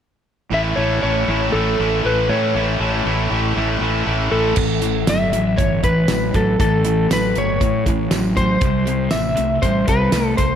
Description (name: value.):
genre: classic rock.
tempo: 119 BPM.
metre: 4/4.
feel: straight.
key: A mixolydian.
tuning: A4 = 440 Hz.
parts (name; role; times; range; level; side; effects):
electric slide guitar; melody; 0.5-10.6 s; A4 to E5; -21 LUFS; left 1 dB; slapback echo.
distorted electric guitar; riff; 0.5-10.6 s; A2 to A3; -23 LUFS; left 9 dB; distortion.
distorted electric guitar; riff; 0.5-10.6 s; A2 to E4; -23 LUFS; right 10 dB; overdrive, slapback echo.
fuzz fingered electric bass; bass; 0.5-10.6 s; G1 to A2; -22 LUFS; equal; overdrive.
damped 70s drum kit; drums; 4.6-10.5 s; crash cymbal, hi-hat, kick drum, snare drum, tambourine; -21 LUFS; right 1 dB; none.
room: moderate lush hall reverb, RT60 2.0 s, studio reverb.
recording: big arena sound.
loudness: -16 LUFS.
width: side -9 dB against mid.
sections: 0.5-4.6 A section; 4.6-10.6 B section.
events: none.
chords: 0.5 A; 4.6 A5; 8.6 C.